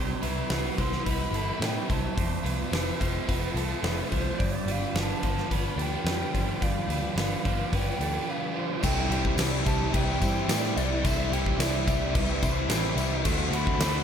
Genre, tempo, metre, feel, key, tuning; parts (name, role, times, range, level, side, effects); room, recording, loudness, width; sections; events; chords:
rock, shoegaze and dream pop; 108 BPM; 4/4; straight; C major; A4 = 440 Hz
string machine, full ensemble; sustained chords; 0.0-14.0 s; E4 to D6; -39 LUFS; left 1 dB; ensemble chorus
direct-recorded clean electric guitar; arpeggios; 0.0-14.0 s; F#4 to E5; -38 LUFS; right 6 dB; lush chorus, digital delay
biting overdriven guitar; riff; 0.0-14.0 s; F2 to F#4; -32 LUFS; right 10 dB; reverse reverb
overdriven electric guitar; riff; 0.0-14.0 s; F2 to G4; -34 LUFS; left 12 dB; wide subtle chorus
vintage muted picked electric bass; bass; 0.0-14.0 s; F1 to A2; -30 LUFS; left 1 dB
huge arena drum kit; drums; 0.2-13.9 s; crash cymbal, hi-hat, kick drum, snare drum; -30 LUFS; left 1 dB
mellow hollow silver concert flute; melody; 0.8-14.0 s; C5 to C6; -35 LUFS; equal; digital delay
tambourine; percussion; 8.8-13.9 s; -42 LUFS; left 6 dB
light reverb, small room ambience; -25 LUFS; side -8 dB against mid
0.0-8.8 A section; 8.8-14.0 B section
break 8.3-8.8
0.0 Cmaj7; 2.2 F; 4.4 G7; 8.8 Cadd9; 13.2 D7